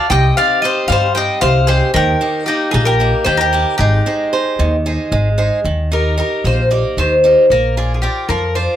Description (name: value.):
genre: greek folk.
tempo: 227 BPM (eighths).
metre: 7/8.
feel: straight.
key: unclear.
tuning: A4 = 439 Hz.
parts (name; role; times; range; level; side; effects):
Greek bouzouki; melody; 0.0-8.8 s; G4 to G5; -16 LUFS; left 2 dB; none.
bowl-back mandolin; second line; 0.0-5.1 s; Eb4 to Eb5; -18 LUFS; equal; none.
picked swing-style acoustic guitar; accompaniment; 0.0-8.8 s; C3 to D5; -20 LUFS; right 3 dB; none.
upright bass; bass; 0.1-8.7 s; Ab1 to G2; -16 LUFS; equal; none.
room: light reverb.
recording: none.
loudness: -12 LUFS.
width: side -11 dB against mid.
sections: 0.0-5.6 A section; 5.6-8.8 B section.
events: none.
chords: 0.1 Cm; 2.0 Eb; 3.8 Ab; 5.6 Eb; 7.5 Bb.